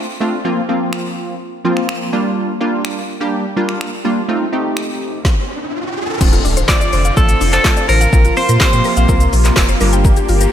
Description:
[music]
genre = dance-pop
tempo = 125 BPM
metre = 4/4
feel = straight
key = Bb major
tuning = A4 = 439 Hz
[part]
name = funky polysynth comp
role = accompaniment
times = 0.0-10.4 s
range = F3 to C5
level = -19 LUFS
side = right 1 dB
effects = chorus, sidechain pumping, slapback echo
[part]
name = deep house drum kit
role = drums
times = 0.9-10.5 s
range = crash cymbal, finger snaps, handclaps, hi-hat, kick drum, shaker, snare drum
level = -16 LUFS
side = equal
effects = none
[part]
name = riser and impact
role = sound effects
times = 5.1-8.1 s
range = none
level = -24 LUFS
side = equal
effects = none
[part]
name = supersaw pad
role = sustained chords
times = 6.6-10.5 s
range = C3 to G4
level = -22 LUFS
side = equal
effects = phaser, sidechain pumping
[part]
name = mallet-like synth pluck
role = arpeggios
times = 6.2-10.5 s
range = Bb3 to G5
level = -23 LUFS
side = left 4 dB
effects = chorus, sidechain pumping, ping-pong delay, slapback echo
[part]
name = warm sub bass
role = bass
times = 6.2-10.5 s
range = D1 to Bb2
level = -15 LUFS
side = equal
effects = sidechain pumping
[part]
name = twelve-string electric guitar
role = melody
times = 6.7-9.3 s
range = A4 to D5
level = -17 LUFS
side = equal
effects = ping-pong delay, slapback echo
[part]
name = tambourine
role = percussion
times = 6.7-9.7 s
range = none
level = -34 LUFS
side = right 9 dB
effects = none
[sound]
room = light reverb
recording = none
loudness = -13 LUFS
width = side -10 dB against mid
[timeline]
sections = 0.0-6.2 A section; 6.2-10.5 B section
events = riser 5.1-6.2; impact 6.2-8.1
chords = 0.4 Bbsus2; 2.1 Gm7; 4.3 F7 (rootless); 6.2 Dm7; 8.1 Bbsus2; 9.8 Gm7

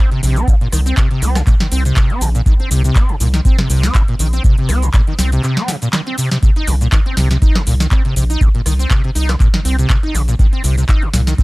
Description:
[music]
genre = acid house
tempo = 121 BPM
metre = 4/4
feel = swing 55% on 16ths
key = C minor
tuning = A4 = 440 Hz
[part]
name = overdriven acid bass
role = riff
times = 0.0-11.4 s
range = Bb2 to Eb4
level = -19 LUFS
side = equal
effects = distortion, tube saturation, ensemble chorus, sidechain pumping
[part]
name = booming analog drum machine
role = drums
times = 0.1-11.4 s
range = handclaps, hi-hat, rim click, shaker, snare drum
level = -21 LUFS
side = equal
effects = none
[part]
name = round analog bass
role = bass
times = 0.2-11.3 s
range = Bb1 to C2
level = -15 LUFS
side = equal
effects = sidechain pumping
[part]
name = electronic kick drum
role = drums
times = 0.5-11.4 s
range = none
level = -13 LUFS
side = equal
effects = none
[sound]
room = little or no reverb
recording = dry, gritty hardware recording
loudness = -12 LUFS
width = side -22 dB against mid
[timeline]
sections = 0.0-11.4 A section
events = break 5.4-6.4; drum fill 5.9-6.4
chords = 0.0 C5

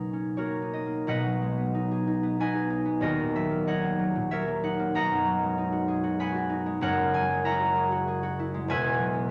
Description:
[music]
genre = classical, solo harp piece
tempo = 95 BPM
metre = 3/4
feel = uneven beats, rubato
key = B major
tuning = A4 = 440 Hz
[part]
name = concert harp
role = solo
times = 0.0-9.3 s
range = D#1 to B5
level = -28 LUFS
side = equal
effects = none
[sound]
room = wet recital hall reverb, RT60 1.4 s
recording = none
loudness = -28 LUFS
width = mono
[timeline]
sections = 0.0-1.1 A section; 1.1-9.3 B section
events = none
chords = 0.0 Bmaj9; 1.1 B6; 3.0 D#m7; 5.0 B6; 6.8 F#9; 8.7 Eadd9

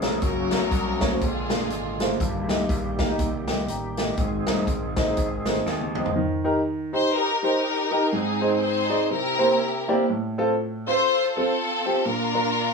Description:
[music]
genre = uptempo gospel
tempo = 122 BPM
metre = 4/4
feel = swing 59% on 8ths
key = Eb major from 6.2 s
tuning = A4 = 441 Hz
[part]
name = warm grand piano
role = accompaniment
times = 0.0-12.7 s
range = G2 to Bb5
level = -24 LUFS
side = right 1 dB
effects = none
[part]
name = bright tonewheel organ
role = sustained chords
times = 0.0-6.1 s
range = D3 to Ab4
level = -31 LUFS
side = right 1 dB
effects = fast rotary speaker, overdrive, chorus vibrato
[part]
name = gritty slap bass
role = bass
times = 0.0-6.1 s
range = Gb1 to Eb2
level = -32 LUFS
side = left 1 dB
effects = overdrive
[part]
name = swinging big-band drum kit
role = drums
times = 0.0-6.2 s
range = hi-hat, kick drum, snare drum, toms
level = -26 LUFS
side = equal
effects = none
[part]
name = warm studio string section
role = melody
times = 0.2-2.2, 6.9-12.7 s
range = C4 to C5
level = -24 LUFS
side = left 3 dB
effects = none
[sound]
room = light reverb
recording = band playing live in one room, small room ambience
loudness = -21 LUFS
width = side -4 dB against mid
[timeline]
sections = 0.0-6.2 A section; 6.2-12.7 B section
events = drum fill 5.7-6.2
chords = 0.2 Gb; 1.2 Bb7; 2.2 Eb/G; 4.2 Ab; 6.2 Eb; 8.1 Ab; 9.1 C7; 10.1 F/A; 12.1 Bb

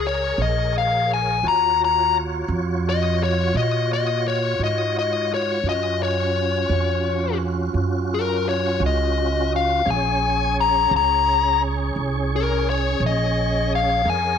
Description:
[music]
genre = slow blues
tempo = 57 BPM (dotted quarters)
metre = 12/8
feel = straight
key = unclear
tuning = A4 = 441 Hz
[part]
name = smooth overdriven lead guitar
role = melody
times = 0.0-14.4 s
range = Bb4 to Bb5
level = -21 LUFS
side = left 7 dB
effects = none
[part]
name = tonewheel organ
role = sustained chords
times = 0.0-14.4 s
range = Db4 to Db5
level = -26 LUFS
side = right 3 dB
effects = slow rotary speaker, overdrive, chorus vibrato
[part]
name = upright bass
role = bass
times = 0.0-14.4 s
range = Bb1 to Bb2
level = -24 LUFS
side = right 3 dB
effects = none
[sound]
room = moderate echo chamber reverb, RT60 1.4 s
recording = none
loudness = -18 LUFS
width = side -7 dB against mid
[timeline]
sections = 0.0-14.4 A section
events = lead electric guitar solo 0.0-14.4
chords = 0.0 Bbm7; 1.4 Ebm9; 9.9 Bbm9

